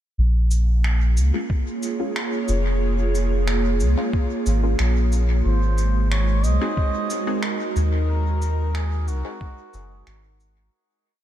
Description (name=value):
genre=ambient dub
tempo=91 BPM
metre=4/4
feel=straight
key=Bb minor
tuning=A4 = 440 Hz
part: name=airy breathy pad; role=sustained chords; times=0.8-10.7 s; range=Ab3 to Db5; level=-27 LUFS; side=right 2 dB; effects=chorus
part: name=soft dub sub bass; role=bass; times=0.2-10.7 s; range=F1 to Eb2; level=-19 LUFS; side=equal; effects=none
part: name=cabasa and finger snaps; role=drums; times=0.5-10.5 s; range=none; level=-33 LUFS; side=right 1 dB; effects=dub echo
part: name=filtered dub chord stab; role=stabs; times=1.3-9.4 s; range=Ab3 to Ab4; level=-33 LUFS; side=left 3 dB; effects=phaser, dub echo
part: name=electronic kick drum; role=drums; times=1.5-9.5 s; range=none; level=-23 LUFS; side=equal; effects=none
part: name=trumpet with cup mute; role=melody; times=5.5-10.4 s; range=Gb4 to Eb5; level=-31 LUFS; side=right 1 dB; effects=dub echo
room=light reverb, small room ambience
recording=none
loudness=-19 LUFS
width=side -12 dB against mid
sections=0.2-10.7 groove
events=fade-out 7.2-10.7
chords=0.2 Bbm7; 5.5 Ab7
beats=| 0.18 0.84 1.50 2.16 | 2.82 3.48 4.14 4.79 | 5.45 6.11 6.77 7.43 | 8.09 8.75 9.41 10.07